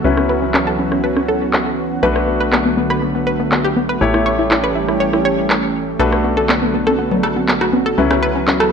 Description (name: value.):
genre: progressive house.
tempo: 121 BPM.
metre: 4/4.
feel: straight.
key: B minor.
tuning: A4 = 442 Hz.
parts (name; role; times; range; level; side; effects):
lush unison pad; sustained chords; 0.0-8.7 s; D3 to G4; -20 LUFS; right 2 dB; chorus.
analog pluck; arpeggios; 0.0-8.7 s; B3 to C#5; -19 LUFS; equal; chorus, dub echo.
clear baby grand piano; stabs; 0.0-8.7 s; F#3 to C#5; -21 LUFS; left 4 dB; low-pass filter, dub echo.
plucky analog bass; bass; 0.0-8.7 s; A1 to C#2; -26 LUFS; right 1 dB; none.
electronic rim click and handclaps; drums; 0.2-8.6 s; none; -20 LUFS; equal; low-pass filter on hats, small room reverb, low-pass filter on snare, low-pass filter on cymbals.
electronic congas and rim click; percussion; 6.9-8.7 s; none; -20 LUFS; left 1 dB; small room reverb.
room: moderate digital room reverb, RT60 1.2 s.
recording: none.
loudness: -14 LUFS.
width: side -6 dB against mid.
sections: 0.0-8.7 A section.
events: filter sweep on synth pluck 0.0-8.7.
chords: 0.0 F#7sus4/C#; 2.0 Bm7; 4.0 A7; 6.0 Bm7; 8.0 F#7sus4/C#.